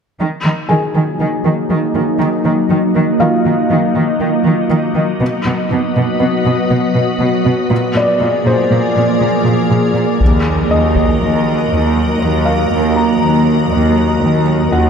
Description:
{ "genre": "cinematic, hybrid orchestral and electronic film score", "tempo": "120 BPM", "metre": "5/4", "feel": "straight", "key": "Eb minor", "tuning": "A4 = 440 Hz", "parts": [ { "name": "soft additive organ-like pad", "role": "sustained chords", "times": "0.7-14.9 s", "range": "F3 to Eb5", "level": "-15 LUFS", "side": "equal", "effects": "ensemble chorus, built-in reverb, low-pass filter" }, { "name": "rich symphonic cello section", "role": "bass", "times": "0.2-14.9 s", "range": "Eb2 to Eb3", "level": "-16 LUFS", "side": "right 1 dB", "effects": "none" }, { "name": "felt-muted upright piano", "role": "texture", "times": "0.7-14.9 s", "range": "F4 to Bb5", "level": "-20 LUFS", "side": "left 2 dB", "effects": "digital delay" }, { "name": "taiko ensemble", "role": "drums", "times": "10.2-11.2 s", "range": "none", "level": "-17 LUFS", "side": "left 1 dB", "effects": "none" } ], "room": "moderate scoring stage reverb, RT60 2.0 s", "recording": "none", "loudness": "-12 LUFS", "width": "side -6 dB against mid", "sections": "0.2-10.2 A section; 10.2-14.9 B section", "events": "filter sweep on ambient pad 0.2-10.2; build-up 10.2-14.9", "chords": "0.2 Ebm; 5.2 B; 7.7 Bb7; 10.2 Ebm", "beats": "| 0.21 0.71 1.21 1.71 2.21 | 2.71 3.21 3.71 4.21 4.71 | 5.21 5.71 6.21 6.71 7.21 | 7.71 8.21 8.71 9.21 9.71 | 10.21 10.71 11.21 11.71 12.21 | 12.71 13.21 13.71 14.21 14.71" }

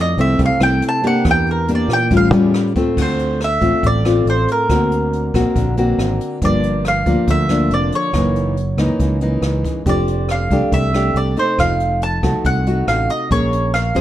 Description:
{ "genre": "bossa nova", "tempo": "139 BPM", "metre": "4/4", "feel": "straight", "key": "F major", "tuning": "A4 = 440 Hz", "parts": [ { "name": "mandolin", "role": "melody", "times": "0.0-14.0 s", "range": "Ab4 to A5", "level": "-20 LUFS", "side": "right 1 dB", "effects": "none" }, { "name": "nylon-string guitar", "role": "accompaniment", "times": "0.0-14.0 s", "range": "Gb2 to C5", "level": "-18 LUFS", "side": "left 1 dB", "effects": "none" }, { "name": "fingered electric bass", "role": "bass", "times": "0.0-14.0 s", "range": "F1 to Bb2", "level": "-19 LUFS", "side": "equal", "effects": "none" }, { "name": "jazz brush drum kit", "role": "drums", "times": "0.2-14.0 s", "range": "crash cymbal, hi-hat, kick drum, rim click", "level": "-24 LUFS", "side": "equal", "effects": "none" } ], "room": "little or no reverb", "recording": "dark, warm production", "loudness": "-14 LUFS", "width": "side -12 dB against mid", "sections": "0.0-3.0 A section; 3.0-14.0 B section", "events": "mandolin solo 0.0-3.0", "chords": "0.0 Fmaj7; 1.2 Em7b5; 2.1 A7b13; 3.0 Dm7; 4.7 Daug7; 6.4 Gm7; 8.1 Gb6; 9.9 F69; 11.6 F7b9; 13.3 Bbm7", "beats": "0.39 0.82 | 1.25 1.68 2.11 2.54 | 2.97 3.40 3.83 4.26 | 4.69 5.12 5.55 5.98 | 6.42 6.85 7.28 7.71 | 8.14 8.57 9.00 9.43 | 9.86 10.29 10.72 11.15 | 11.58 12.01 12.44 12.88 | 13.30 13.74" }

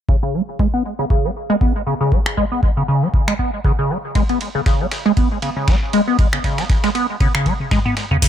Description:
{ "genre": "acid house", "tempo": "118 BPM", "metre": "4/4", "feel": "swing 55% on 16ths", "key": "unclear", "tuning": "A4 = 440 Hz", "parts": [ { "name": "liquid acid bass", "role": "riff", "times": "0.1-8.3 s", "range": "C#3 to B3", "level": "-19 LUFS", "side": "equal", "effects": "phaser, tube saturation, analog chorus, sidechain pumping, dub echo" }, { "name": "electronic kick drum", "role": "drums", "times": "0.1-8.3 s", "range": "none", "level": "-17 LUFS", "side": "equal", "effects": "overdrive" }, { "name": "booming analog drum machine", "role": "drums", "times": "2.3-8.3 s", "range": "crash cymbal, finger snaps, hi-hat, toms", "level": "-23 LUFS", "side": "equal", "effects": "none" }, { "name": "dusty soul sampler-style drum kit", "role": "drums", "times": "4.2-8.3 s", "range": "ride cymbal, snare drum", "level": "-29 LUFS", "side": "right 2 dB", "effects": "sidechain pumping on cymbals, high-pass filter on cymbals, high-pass filter on snare" } ], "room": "light reverb", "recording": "echo-heavy mix", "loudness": "-16 LUFS", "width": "side -10 dB against mid", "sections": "0.1-8.2 A section", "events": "filter sweep on acid bass 0.1-8.2; drum fill 7.5-8.2", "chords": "none", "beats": "| 0.09 0.59 1.10 1.61 | 2.12 2.63 3.14 3.65 | 4.15 4.66 5.17 5.68 | 6.19 6.70 7.21 7.71 | 8.22" }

